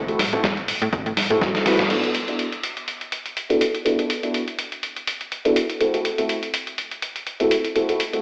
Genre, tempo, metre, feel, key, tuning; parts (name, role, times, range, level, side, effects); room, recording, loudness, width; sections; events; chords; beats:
filtered disco house; 123 BPM; 4/4; swing 55% on 16ths; A4 = 439 Hz
dark concert grand piano; accompaniment; 0.0-8.2 s; A3 to B4; -24 LUFS; equal; phaser, sidechain pumping, low-pass filter
slap-like FM bass; bass; 0.0-1.9 s; A1 to F#3; -29 LUFS; equal; sidechain pumping, low-pass filter
dusty soul sampler-style drum kit; drums; 0.1-8.2 s; crash cymbal, hi-hat, snare drum; -27 LUFS; equal; small room ambience
electronic kick drum; drums; 0.4-1.5 s; -30 LUFS; equal; overdrive, small room ambience
wet digital room reverb, RT60 1.0 s, digital ambience; played on a big sound system in a bare room, large studio reverb, AM radio sound; -23 LUFS; mono
0.0-1.9 A section; 1.9-8.2 B section
drum fill 1.2-1.9; band accent 1.8; filter sweep on grand piano 1.9-8.2
0.0 Am6; 1.9 E9sus4; 5.8 Am6
0.44 0.93 1.41 | 1.90 2.39 2.88 3.37 | 3.85 4.34 4.83 5.32 | 5.80 6.29 6.78 7.27 | 7.75